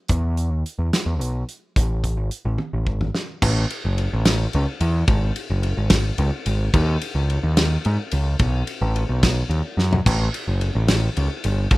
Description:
math rock and midwest emo; 72 BPM (dotted quarters); 6/8; straight; A lydian; A4 = 441 Hz
growling picked electric bass; bass; 0.1-11.8 s; F#1 to G#2; -20 LUFS; equal; overdrive
loose indie drum kit; drums; 0.1-11.8 s; crash cymbal, hi-hat, kick drum, ride cymbal, snare drum, toms; -22 LUFS; equal
little or no reverb; rough home demo mix; -19 LUFS; side -20 dB against mid
0.0-3.4 A section; 3.4-11.8 B section
drum fill 2.6-3.4, 9.8
| 0.10 0.93 | 1.77 2.60 | 3.43 4.26 | 5.09 5.92 | 6.74 7.57 | 8.40 9.23 | 10.05 10.88 | 11.71

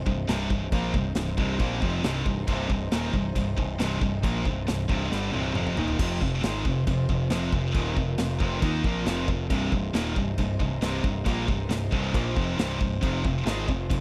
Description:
heavy metal; 137 BPM; 4/4; straight; C minor; A4 = 441 Hz
clear studio string section; sustained chords; 0.0-14.0 s; C3 to C5; -40 LUFS; equal
distorted electric guitar; riff; 0.0-14.0 s; C2 to Eb4; -34 LUFS; equal; distortion
heavy high-gain guitar; riff; 0.0-14.0 s; C2 to Eb4; -35 LUFS; equal; distortion
thick fuzz guitar; riff; 0.0-14.0 s; C2 to Eb4; -35 LUFS; equal; distortion
growling picked electric bass; bass; 0.0-14.0 s; C1 to Eb2; -34 LUFS; equal; overdrive
big rock drum kit; drums; 0.1-14.0 s; crash cymbal, kick drum, snare drum, toms; -32 LUFS; equal
little or no reverb; dry, close 1970s-style studio recording; -27 LUFS; mono
0.0-6.0 A section; 6.0-14.0 B section
drum fill 5.1-6.0
0.0 Cm; 6.0 F5; 9.5 Cm; 13.0 F5
0.28 | 0.72 1.16 1.60 2.04 | 2.48 2.92 3.36 3.79 | 4.23 4.67 5.11 5.55 | 5.99 6.43 6.87 7.31 | 7.75 8.19 8.62 9.06 | 9.50 9.94 10.38 10.82 | 11.26 11.70 12.14 12.58 | 13.02 13.46 13.90

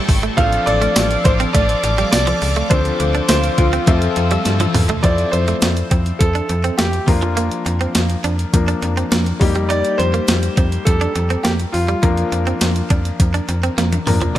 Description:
1980s-style pop; 103 BPM; 4/4; straight; F major; A4 = 436 Hz
clear grand piano; melody; 0.0-14.4 s; F4 to F5; -21 LUFS; right 1 dB; digital delay
clear concert grand piano; accompaniment; 0.0-14.4 s; F3 to E5; -24 LUFS; left 5 dB
high-gain distorted guitar; accompaniment; 0.0-5.6 s; A2 to F4; -28 LUFS; equal; distortion, wide subtle chorus
sweeping resonant pad; sustained chords; 0.0-5.0 s; F4 to E6; -25 LUFS; left 1 dB; chorus
direct-recorded clean electric guitar; riff; 0.0-14.4 s; F3 to Eb4; -25 LUFS; right 5 dB; wide subtle chorus, digital delay
slap-like FM bass; bass; 0.1-14.4 s; Ab1 to G2; -19 LUFS; equal
clean 12-bit digital drum machine; drums; 0.1-14.4 s; hi-hat, kick drum, snare drum, tambourine, toms; -18 LUFS; equal; overdrive
light reverb; lossy compression artefacts; -14 LUFS; side -13 dB against mid
0.0-5.0 A section; 5.0-14.4 B section
drum fill 4.5-5.0, 13.8-14.4
0.4 F6/A; 2.7 Dm7; 3.9 Fmaj7; 7.1 Bb/F; 9.4 Eb/F; 12.0 Bb/F
| 0.38 0.96 1.54 2.13 | 2.71 3.29 3.88 4.46 | 5.04 5.62 6.21 6.79 | 7.37 7.95 8.54 9.12 | 9.70 10.28 10.87 11.45 | 12.03 12.61 13.20 13.78 | 14.36

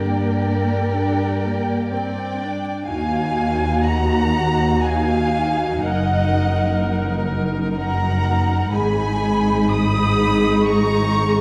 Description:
classical, slow romantic movement for string orchestra; 62 BPM; 3/4; rubato; Eb minor; A4 = 441 Hz
dark studio violin section; melody; 0.0-11.4 s; Gb5 to Eb6; -27 LUFS; equal
rich chamber violin section; second line; 0.0-11.4 s; G4 to Cb6; -29 LUFS; equal
clear chamber viola section; accompaniment; 0.0-11.4 s; Bb3 to Bb4; -26 LUFS; equal
warm chamber cello section; bass; 0.0-11.4 s; Eb2 to Bb4; -25 LUFS; equal
warm studio double bass section; bass; 0.0-11.4 s; Gb1 to G2; -25 LUFS; equal
moderate scoring stage reverb, RT60 1.4 s; dark, warm production, vinyl crackle; -20 LUFS; mono
0.0-2.9 A section; 2.9-11.4 B section
0.0 Gm; 2.9 Ebm; 5.8 Ebm/Gb; 8.7 Abm
0.92 1.90 | 2.88 3.86 4.84 | 5.83 6.79 7.76 | 8.73 9.71 10.67

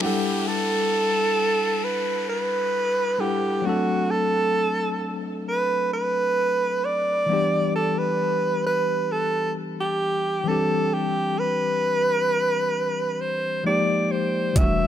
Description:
contemporary R&B; 66 BPM; 4/4; straight; A4 = 440 Hz
breathy alto saxophone; melody; 0.0-14.9 s; F#4 to E5; -22 LUFS; right 2 dB; ping-pong delay
bright tine electric piano; accompaniment; 0.0-14.9 s; E3 to F#5; -27 LUFS; left 4 dB; medium stereo tremolo
downlifter; sound effects; 0.0-7.3 s; -32 LUFS; left 2 dB
warm 808-style bass; bass; 14.6-14.9 s; E1; -26 LUFS; right 1 dB
smooth R&B drum kit; drums; 14.6-14.8 s; hi-hat, kick drum; -19 LUFS; equal
light reverb; -21 LUFS; side -10 dB against mid
0.0-14.9 A section
0.0 Em11; 3.7 D7; 7.3 G6; 10.5 Cmaj9; 13.7 Fm11
| 0.01 0.92 1.83 2.74 | 3.65 4.56 5.47 6.38 | 7.29 8.20 9.11 10.02 | 10.92 11.83 12.74 13.65 | 14.56

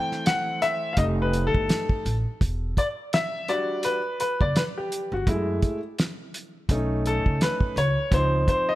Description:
hip hop, jazz-hop; 84 BPM; 4/4; swing 58% on 16ths; A4 = 441 Hz
warm upright piano; accompaniment; 0.0-8.8 s; E3 to G5; -25 LUFS; left 1 dB
cloth-damped thuddy drum kit; drums; 0.1-8.7 s; hi-hat, kick drum, snare drum; -25 LUFS; equal
upright bass; bass; 1.0-8.4 s; E1 to F#2; -26 LUFS; right 1 dB
light reverb, small room ambience; -22 LUFS; side -16 dB against mid
0.0-2.4 A section; 2.4-8.8 A section
upright piano solo 0.0-2.4, 2.4-8.8
0.0 F#m7b5; 1.0 F9; 2.4 Em9; 5.3 F#m7; 6.7 B9; 8.1 C#maj7
0.27 0.98 1.69 | 2.41 3.12 3.84 4.55 | 5.26 5.98 6.69 7.41 | 8.12

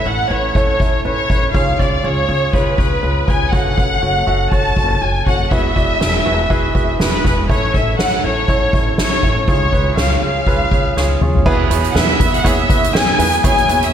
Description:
piano-driven pop; 121 BPM; 4/4; swing 56% on 16ths; A4 = 436 Hz
warm studio violin section; melody; 0.0-13.9 s; B4 to A5; -18 LUFS; left 1 dB
warm grand piano; accompaniment; 0.0-13.9 s; G#2 to E5; -20 LUFS; right 3 dB; slapback echo
upright bass; bass; 0.1-13.9 s; E1 to E2; -21 LUFS; equal
soft-mallet drum kit; drums; 0.6-13.9 s; crash cymbal, hi-hat, kick drum, snare drum, toms; -17 LUFS; equal
moderate concert hall reverb, RT60 2.1 s; big arena sound; -13 LUFS; side -9 dB against mid
0.0-11.5 A section; 11.5-13.9 B section
drum fill 11.0-11.5
0.0 A; 1.5 C#; 3.5 F#m; 5.5 Eadd9; 7.5 A; 9.5 C#; 11.5 E
0.06 0.56 1.05 | 1.55 2.04 2.54 3.04 | 3.53 4.03 4.52 5.02 | 5.51 6.01 6.51 7.00 | 7.50 7.99 8.49 8.98 | 9.48 9.98 10.47 10.97 | 11.46 11.96 12.45 12.95 | 13.44

